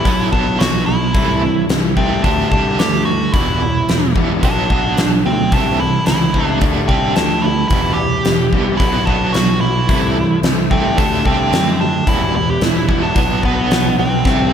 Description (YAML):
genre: classic rock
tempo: 110 BPM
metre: 4/4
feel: straight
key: E minor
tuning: A4 = 439 Hz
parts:
  - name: nasal lead guitar with a parked wah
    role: melody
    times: 0.0-14.5 s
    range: B3 to G4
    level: -19 LUFS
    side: right 2 dB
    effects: overdrive
  - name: cranked stack guitar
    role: riff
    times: 0.0-14.5 s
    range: E2 to D4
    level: -21 LUFS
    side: right 9 dB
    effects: overdrive, tremolo
  - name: raw garage guitar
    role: riff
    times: 0.0-14.5 s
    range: B2 to B3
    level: -22 LUFS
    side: left 9 dB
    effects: overdrive
  - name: fuzz picked electric bass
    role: bass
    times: 0.1-14.5 s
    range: E1 to F#2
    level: -21 LUFS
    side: equal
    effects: overdrive
  - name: huge arena drum kit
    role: drums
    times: 0.1-14.4 s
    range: hi-hat, kick drum, snare drum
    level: -18 LUFS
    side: left 1 dB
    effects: none
  - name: tonewheel organ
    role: sustained chords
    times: 7.7-14.5 s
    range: E3 to E5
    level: -29 LUFS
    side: equal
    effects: none
room: moderate lush hall reverb, RT60 2.5 s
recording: big arena sound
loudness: -13 LUFS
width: side -8 dB against mid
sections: 0.0-14.5 A section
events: drum fill 14.3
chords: 0.1 B5; 1.2 Am/C; 2.2 Dsus4; 3.3 Em; 4.4 Bm; 5.5 Am/C; 6.6 Dsus4; 7.7 Em; 8.8 Bm; 9.9 Am/C; 11.0 Dsus4; 12.1 Em; 13.2 Bm